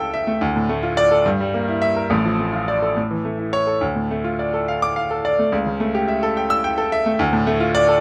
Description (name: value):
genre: classical, virtuoso piano study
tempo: 71 BPM (dotted quarters)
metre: 6/8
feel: rubato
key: D minor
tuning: A4 = 440 Hz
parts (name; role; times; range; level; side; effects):
- clear grand piano; solo; 0.0-8.0 s; A1 to E6; -20 LUFS; equal; none
room: light reverb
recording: none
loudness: -20 LUFS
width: mono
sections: 0.0-8.0 A section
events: none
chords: 0.4 Dm; 1.2 Edim/G; 2.1 Dm/A; 3.0 A; 3.8 Dm; 5.5 A7/C#; 7.2 Dm